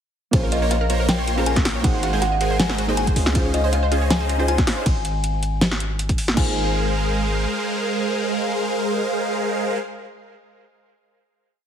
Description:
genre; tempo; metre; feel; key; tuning
future bass; 159 BPM; 4/4; half-time; Ab major; A4 = 440 Hz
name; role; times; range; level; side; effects
kalimba; melody; 0.3-9.8 s; Eb5 to Ab5; -27 LUFS; left 1 dB; sidechain pumping, tape echo
soft round pluck; accompaniment; 0.3-9.8 s; Bb3 to C5; -28 LUFS; right 2 dB; chorus, sidechain pumping, tape echo
wide unison pluck; arpeggios; 0.3-6.5 s; F4 to Eb5; -31 LUFS; right 4 dB; cassette tape, sidechain pumping, tape echo
supersaw chords; riff; 0.3-9.8 s; Ab3 to C6; -24 LUFS; right 1 dB; phaser, cassette tape, sidechain pumping, tape echo
warm 808-style bass; bass; 0.3-7.5 s; Ab1 to Db2; -23 LUFS; equal; sidechain pumping
electronic kick drum; drums; 0.3-6.5 s; none; -21 LUFS; equal; none
pop drum kit; drums; 0.3-6.5 s; crash cymbal, hi-hat, ride cymbal, snare drum; -23 LUFS; equal; none
room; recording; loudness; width
light reverb, digital ambience; heavily compressed radio sound; -18 LUFS; side -8 dB against mid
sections
0.3-6.4 drop; 6.4-9.4 final chord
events
drop 0.3-6.4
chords
0.3 Bbm7; 1.8 Ab7; 3.2 Dbmaj7; 4.9 N.C.; 6.4 Ab6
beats
| 0.33 0.71 1.09 1.46 | 1.84 2.22 2.60 2.97 | 3.35 3.73 4.11 4.48 | 4.86 5.24 5.62 5.99 | 6.37 6.75 7.12 7.50 | 7.88 8.26 8.63 9.01

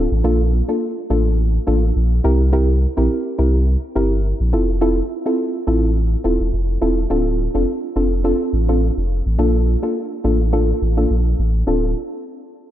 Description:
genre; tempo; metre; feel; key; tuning
afrobeats; 105 BPM; 4/4; swing 55% on 16ths; D minor; A4 = 440 Hz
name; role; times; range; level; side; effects
soft round pluck; accompaniment; 0.0-11.9 s; Bb3 to Bb4; -20 LUFS; equal; chorus, low-pass filter
warm sub bass; bass; 0.0-11.9 s; D1 to C2; -17 LUFS; equal; none
room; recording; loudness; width
moderate plate reverb, RT60 2.6 s; dreamy mix soaked in reverb; -16 LUFS; side -12 dB against mid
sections
0.0-7.1 A section; 7.1-11.7 B section; 11.7-12.7 C section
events
none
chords
0.2 Bbmaj7; 2.2 C7; 4.5 Fmaj7; 7.1 Dm7; 9.4 Bbmaj7; 11.7 Dm7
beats
| 0.24 0.82 1.39 1.96 | 2.53 3.10 3.67 4.25 | 4.82 5.39 5.96 6.53 | 7.10 7.67 8.24 8.82 | 9.39 9.96 10.53 11.10 | 11.67

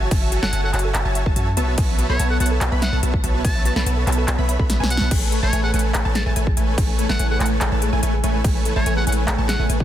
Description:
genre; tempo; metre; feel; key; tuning
future bass; 144 BPM; 4/4; half-time; A major; A4 = 440 Hz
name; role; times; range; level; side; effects
thumb-piano-like synth pluck; arpeggios; 0.0-9.8 s; F#4 to A5; -33 LUFS; equal; chorus, sidechain pumping, ping-pong delay
wide unison pluck; arpeggios; 0.0-9.8 s; G#5 to B5; -33 LUFS; equal; sidechain pumping, ping-pong delay
dense compressed supersaw; riff; 0.0-9.8 s; A3 to B5; -25 LUFS; right 1 dB; sidechain pumping
warm 808-style bass; bass; 0.0-9.8 s; F#1 to F#2; -21 LUFS; equal; tube saturation, sidechain pumping
big-room dance drum kit; drums; 0.1-9.8 s; crash cymbal, handclaps, hi-hat, snare drum; -26 LUFS; equal; overdrive
electronic kick drum; drums; 0.1-9.8 s; none; -20 LUFS; equal; overdrive
trumpet with metal mute; melody; 0.4-9.7 s; C#5 to A5; -29 LUFS; equal; sidechain pumping, dub echo
ethereal airy pad; sustained chords; 6.1-9.8 s; C#3 to E4; -30 LUFS; equal; ensemble chorus, built-in reverb, sidechain pumping
room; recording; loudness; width
little or no reverb; dense, heavily limited modern master; -17 LUFS; side -11 dB against mid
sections
0.0-5.1 A section; 5.1-9.8 A section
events
drop 0.0-5.1, 5.1-9.8; drum fill 4.7-5.1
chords
0.0 F#m7; 1.6 B7sus4; 5.1 Amaj7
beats
| 0.11 0.53 0.94 1.36 | 1.78 2.19 2.61 3.03 | 3.44 3.86 4.28 4.70 | 5.11 5.53 5.95 6.36 | 6.78 7.20 7.61 8.03 | 8.45 8.86 9.28 9.70

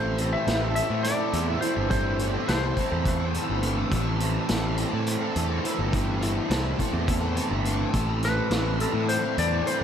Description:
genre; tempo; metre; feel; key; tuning
psychedelic rock; 209 BPM (eighths); 7/8; straight; A minor; A4 = 440 Hz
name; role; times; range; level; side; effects
clean lap steel guitar; melody; 0.0-3.6, 8.2-9.8 s; A4 to E5; -30 LUFS; left 2 dB; lush chorus, tape echo
combo organ; sustained chords; 0.0-9.8 s; A3 to E4; -36 LUFS; right 4 dB; none
crunchy overdriven guitar; riff; 0.0-9.8 s; A2 to A4; -28 LUFS; equal; flanger
fuzz picked electric bass; bass; 0.0-9.8 s; G1 to A2; -28 LUFS; equal; overdrive
vintage drum kit; drums; 0.2-9.8 s; hi-hat, kick drum, snare drum; -31 LUFS; equal; none
room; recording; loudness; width
moderate huge ambient reverb, RT60 8.0 s; dreamy mix soaked in reverb; -23 LUFS; side -8 dB against mid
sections
0.0-9.8 A section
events
none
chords
0.0 Am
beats
0.18 0.47 0.75 1.04 1.33 1.62 | 1.91 2.19 2.48 2.77 3.06 3.35 3.63 | 3.92 4.21 4.50 4.79 5.07 5.36 5.65 | 5.93 6.22 6.51 6.80 7.08 7.37 7.66 | 7.94 8.23 8.52 8.80 9.09 9.38 9.66

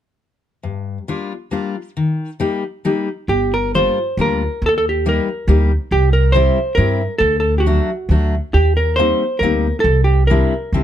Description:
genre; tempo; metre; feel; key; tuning
musette waltz; 138 BPM; 3/4; rubato; G minor; A4 = 442 Hz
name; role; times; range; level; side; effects
fingerpicked steel-string acoustic guitar; accompaniment; 0.6-10.8 s; G2 to G4; -20 LUFS; left 4 dB; none
hollow-body jazz guitar; melody; 3.3-10.8 s; F#4 to C5; -18 LUFS; right 1 dB; none
upright bass; bass; 3.3-10.8 s; G1 to G2; -16 LUFS; right 1 dB; none
room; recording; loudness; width
light reverb; close, detailed microphones; -15 LUFS; side -10 dB against mid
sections
0.6-3.3 A section; 3.3-10.8 B section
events
none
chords
0.6 Gm7; 2.0 Eb; 3.3 Gm7; 4.6 Eb; 5.9 C; 7.2 D; 8.5 Eb6; 9.9 Cadd9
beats
| 0.64 1.09 1.52 | 1.96 2.39 2.83 | 3.28 3.73 4.17 | 4.61 5.04 5.47 | 5.91 6.34 6.78 | 7.21 7.65 8.10 | 8.55 8.99 9.43 | 9.86 10.30 10.73

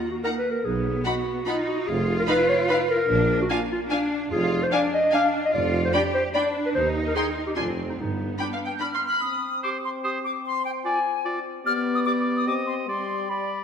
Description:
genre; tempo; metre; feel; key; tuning
cinematic; 148 BPM; 3/4; straight; C minor from 4.3 s; A4 = 440 Hz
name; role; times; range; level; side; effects
dark clarinet; second line; 0.0-13.6 s; D4 to F5; -26 LUFS; left 1 dB; none
rich symphonic cello section; bass; 0.0-9.0 s; Bb3 to G4; -29 LUFS; right 1 dB; none
rich studio violin section; melody; 0.2-8.9 s; Ab5 to C6; -34 LUFS; left 1 dB; none
rich studio violin section; second line; 0.2-9.2 s; F5 to C6; -32 LUFS; left 2 dB; none
rich studio viola section; accompaniment; 0.2-8.9 s; D4 to Eb4; -33 LUFS; equal; none
rich studio double bass section; bass; 0.7-8.3 s; F1 to G2; -31 LUFS; right 3 dB; none
warm tuba; bass; 0.7-8.3 s; F1 to Eb2; -31 LUFS; right 3 dB; none
small flute group; second line; 8.7-13.6 s; G5 to G6; -26 LUFS; left 2 dB; none
mellow French horn section; sustained chords; 9.2-13.6 s; G3 to C4; -29 LUFS; left 3 dB; none
bright oboe; second line; 9.6-13.6 s; C5 to Eb5; -31 LUFS; right 1 dB; none
room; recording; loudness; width
wet scoring stage reverb, RT60 1.5 s; none; -22 LUFS; side -7 dB against mid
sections
0.0-9.2 A section; 9.2-13.6 B section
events
none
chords
0.0 Ebm; 0.7 B; 1.9 Fm7b5; 3.1 Bb; 4.3 Ddim/F; 5.5 G7(no3)/F; 6.7 Cm/Eb; 7.6 Dm7/F; 8.0 G; 9.2 Cm; 11.7 G/B; 12.5 Cm; 12.9 G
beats
0.25 | 0.65 1.06 1.47 | 1.88 2.28 2.69 | 3.10 3.50 3.91 | 4.31 4.72 5.12 | 5.53 5.93 6.34 | 6.74 7.15 7.56 | 7.98 8.39 8.80 | 9.22 9.63 10.04 | 10.44 10.85 11.25 | 11.66 12.06 12.47 | 12.88 13.29

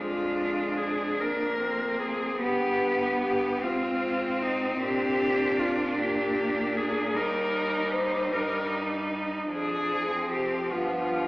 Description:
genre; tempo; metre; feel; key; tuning
classical, lyrical piece for cello ensemble; 50 BPM (dotted quarters); 6/8; rubato; unclear; A4 = 440 Hz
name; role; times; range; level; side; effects
rich cello; melody; 0.0-11.3 s; Eb4 to C5; -28 LUFS; left 1 dB; none
clear cello; second line; 0.0-11.3 s; B3 to Eb4; -30 LUFS; right 1 dB; none
clear cello; accompaniment; 0.0-11.3 s; F3 to C4; -32 LUFS; equal; none
rich cello; bass; 0.0-11.3 s; Eb2 to Bb2; -37 LUFS; equal; none
room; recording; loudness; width
wet recital hall reverb, RT60 1.4 s; recorded in a church or concert hall, AM radio sound; -25 LUFS; side -21 dB against mid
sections
0.0-11.3 A section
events
none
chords
0.0 Ddim/F; 2.4 G; 3.6 Ab; 4.8 Bb; 7.2 Eb; 9.5 Ddim/F; 10.7 G7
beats
1.19 | 2.40 3.62 | 4.81 5.99 | 7.17 8.34 | 9.51 10.71

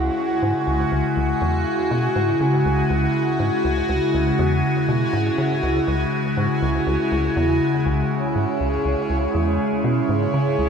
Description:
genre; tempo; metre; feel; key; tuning
ambient, sequencer-driven space music; 121 BPM; 4/4; straight; C# minor; A4 = 443 Hz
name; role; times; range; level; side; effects
evolving wavetable pad; sustained chords; 0.0-10.7 s; C#3 to G#4; -20 LUFS; left 1 dB; phaser, built-in reverb, shimmer reverb
tight sequencer bass; riff; 0.0-10.7 s; C#2 to C#3; -24 LUFS; equal; analog chorus, cassette tape, ping-pong delay
bubbling stepped-filter texture; texture; 0.0-10.7 s; C#4 to G#5; -26 LUFS; right 3 dB; chorus, built-in reverb, shimmer reverb
room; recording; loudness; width
moderate plate reverb, RT60 3.3 s; none; -18 LUFS; side -6 dB against mid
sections
0.0-10.7 A section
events
none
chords
0.0 C#m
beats
0.42 0.92 1.41 | 1.91 2.40 2.90 3.40 | 3.89 4.39 4.88 5.38 | 5.88 6.37 6.87 7.36 | 7.86 8.36 8.85 9.35 | 9.84 10.34

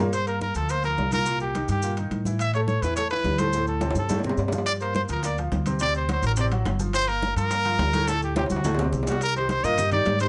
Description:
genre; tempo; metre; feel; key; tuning
latin, salsa; 212 BPM; 4/4; straight; G minor; A4 = 442 Hz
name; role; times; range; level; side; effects
bright concert grand piano; accompaniment; 0.0-10.3 s; A2 to Bb4; -33 LUFS; equal; none
upright bass; bass; 0.0-10.3 s; G1 to A2; -30 LUFS; equal; none
bright trumpet; melody; 0.1-10.3 s; F#4 to E5; -28 LUFS; equal; none
congas; percussion; 0.1-10.3 s; none; -34 LUFS; equal; none
maracas; percussion; 0.1-10.3 s; none; -42 LUFS; equal; none
timbales; percussion; 0.1-10.3 s; none; -34 LUFS; equal; none
bongos; percussion; 4.7-9.1 s; none; -38 LUFS; equal; none
room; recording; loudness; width
moderate studio ambience, RT60 0.4 s; nothing above 10.7 kHz; -25 LUFS; mono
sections
0.1-9.2 A section; 9.2-10.3 B section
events
drum fill 3.8-4.7, 8.4-9.2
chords
0.1 Gm7; 1.3 Cm7; 2.4 A5; 3.5 D7sus4; 4.7 Gm7; 5.8 D7; 6.9 Gm7; 8.1 D5; 8.6 D7; 9.2 Cm7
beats
| 0.13 0.41 0.70 0.98 | 1.26 1.55 1.83 2.12 | 2.40 2.69 2.97 3.25 | 3.54 3.82 4.10 4.39 | 4.67 4.96 5.24 5.52 | 5.81 6.09 6.37 6.66 | 6.94 7.22 7.51 7.79 | 8.08 8.36 8.64 8.93 | 9.21 9.49 9.78 10.06

